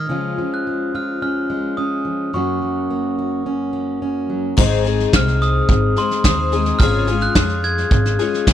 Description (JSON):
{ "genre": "indie folk with a building arrangement", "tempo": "108 BPM", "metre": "4/4", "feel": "straight", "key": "Db major", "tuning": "A4 = 440 Hz", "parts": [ { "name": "glockenspiel with soft plastic mallets", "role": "melody", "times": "0.0-8.5 s", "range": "C6 to Ab6", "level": "-23 LUFS", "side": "right 1 dB", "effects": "none" }, { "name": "fingerpicked plugged-in steel-string acoustic guitar", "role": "accompaniment", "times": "0.0-4.5 s", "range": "Gb2 to Gb4", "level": "-21 LUFS", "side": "equal", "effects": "none" }, { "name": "picked twelve-string acoustic guitar", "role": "accompaniment", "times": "4.6-8.5 s", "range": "Ab2 to Ab4", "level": "-20 LUFS", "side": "left 10 dB", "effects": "none" }, { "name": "upright bass", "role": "bass", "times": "4.6-8.5 s", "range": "Ab1 to F2", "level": "-19 LUFS", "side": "right 1 dB", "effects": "none" }, { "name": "soft brush drum kit", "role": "drums", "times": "4.6-8.5 s", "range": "crash cymbal, kick drum, snare drum", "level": "-18 LUFS", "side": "right 1 dB", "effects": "none" } ], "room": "little or no reverb", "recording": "none", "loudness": "-16 LUFS", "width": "side -11 dB against mid", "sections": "0.0-4.6 A section; 4.6-8.5 B section", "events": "none", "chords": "0.1 Db; 2.3 Gb; 4.6 Ab; 6.8 Db/Ab" }